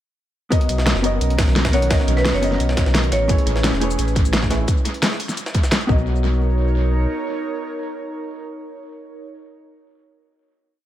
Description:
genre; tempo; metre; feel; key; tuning
liquid drum and bass; 173 BPM; 4/4; straight; B major; A4 = 442 Hz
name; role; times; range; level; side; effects
vintage hollow-body jazz guitar; accompaniment; 0.5-9.3 s; A3 to F#5; -26 LUFS; left 2 dB; tape echo
airy breathy pad; sustained chords; 1.0-9.3 s; D#3 to C#5; -28 LUFS; right 2 dB; chorus, sidechain pumping
electronic kick drum; drums; 0.5-6.0 s; none; -20 LUFS; equal; studio reverb
jungle sampler-style drum kit; drums; 0.5-5.9 s; hi-hat, snare drum; -27 LUFS; equal; high-pass filter on hats, studio reverb, high-pass filter on snare
pop drum kit; drums; 0.5-5.8 s; cabasa, hi-hat, snare drum; -24 LUFS; equal; studio reverb, tape echo
sub bass with octave; bass; 0.7-7.1 s; E1 to B1; -20 LUFS; equal; none
marimba with hard mallets; melody; 1.7-3.3 s; B4 to C#5; -24 LUFS; right 1 dB; dub echo
room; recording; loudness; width
light reverb, digital ambience; echo-heavy mix; -17 LUFS; side -12 dB against mid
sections
0.5-6.1 drop; 6.1-8.8 final hit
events
drop 0.5-6.1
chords
0.5 Bmaj9; 3.3 Amaj9; 4.7 N.C.; 5.9 Bmaj9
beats
| 0.52 0.86 1.21 1.56 | 1.91 2.25 2.60 2.95 | 3.29 3.64 3.99 4.33 | 4.68 5.03 5.37 5.72 | 6.07 6.41 6.76 7.11 | 7.45 7.80 8.15 8.49

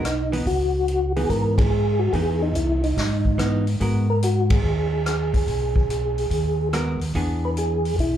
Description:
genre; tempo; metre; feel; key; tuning
soul jazz organ trio; 144 BPM; 4/4; swing 67% on 8ths; G# minor; A4 = 439 Hz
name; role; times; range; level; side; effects
percussive tonewheel organ; melody; 0.0-8.2 s; D#4 to B4; -24 LUFS; equal; slow rotary speaker, chorus vibrato, plate reverb, slapback echo
hollow-body jazz guitar; accompaniment; 0.0-4.1, 6.7-7.8 s; E3 to A#4; -29 LUFS; right 2 dB; plate reverb, slapback echo
mellow tonewheel organ; bass; 0.0-8.2 s; B1 to G#2; -23 LUFS; equal; slow rotary speaker
vintage drum kit; drums; 0.0-8.1 s; hi-hat, kick drum, ride cymbal, rim click, snare drum; -26 LUFS; equal; none
room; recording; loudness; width
light reverb; live gig heard through the venue's PA, club reverb; -20 LUFS; side -10 dB against mid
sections
0.0-8.2 A section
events
band accent 1.5, 4.4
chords
0.5 C#m9; 3.8 G#m9; 7.1 E7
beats
0.04 | 0.46 0.88 1.30 1.72 | 2.13 2.55 2.97 3.39 | 3.80 4.22 4.64 5.06 | 5.47 5.89 6.31 6.73 | 7.14 7.56 7.98

